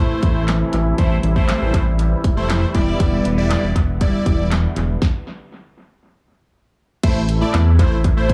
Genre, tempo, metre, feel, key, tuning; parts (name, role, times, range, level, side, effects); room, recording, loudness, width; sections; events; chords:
dance-pop; 119 BPM; 4/4; straight; A minor; A4 = 441 Hz
big bright polysynth; accompaniment; 0.0-8.3 s; G3 to D5; -25 LUFS; equal; phaser, sidechain pumping
filtered supersaw swell; sustained chords; 0.0-8.3 s; C3 to E4; -29 LUFS; equal; sidechain pumping
chorused synth bass; bass; 0.0-8.3 s; E1 to E2; -21 LUFS; equal; sidechain pumping
house drum kit; drums; 0.2-8.3 s; crash cymbal, handclaps, hi-hat, kick drum, snare drum; -21 LUFS; equal; analog delay
little or no reverb; echo-heavy mix, small room ambience; -18 LUFS; mono
0.0-7.0 A section; 7.0-8.3 B section
stop 5.0-7.0
0.0 Am; 2.7 Em7; 7.0 Am